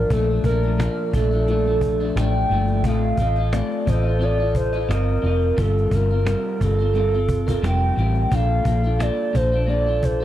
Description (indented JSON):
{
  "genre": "indie pop, bedroom pop",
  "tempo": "88 BPM",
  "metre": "4/4",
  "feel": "swing 55% on 16ths",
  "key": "unclear",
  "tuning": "A4 = 435 Hz",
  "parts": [
    { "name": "hollow clarinet-like synth lead", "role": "melody", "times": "0.0-10.2 s", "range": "A4 to G5", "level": "-24 LUFS", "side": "right 2 dB", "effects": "wide subtle chorus, tape echo" },
    { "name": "electric guitar through a small old amp", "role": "accompaniment", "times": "0.0-10.2 s", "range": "Bb2 to Eb5", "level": "-25 LUFS", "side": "left 3 dB", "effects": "wide subtle chorus, vibrato effect" },
    { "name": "vintage muted fingered electric bass", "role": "bass", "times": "0.0-10.2 s", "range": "F1 to Bb1", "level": "-21 LUFS", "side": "equal", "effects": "none" },
    { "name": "cajon", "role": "drums", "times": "0.1-10.2 s", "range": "none", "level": "-26 LUFS", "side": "equal", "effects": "none" }
  ],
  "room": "little or no reverb",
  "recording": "dark, warm production",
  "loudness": "-18 LUFS",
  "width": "side -12 dB against mid",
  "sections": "0.0-10.2 A section",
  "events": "none",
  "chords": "0.0 Bbmaj7; 2.8 F7/A; 5.6 Gm11; 8.3 Bbmaj7"
}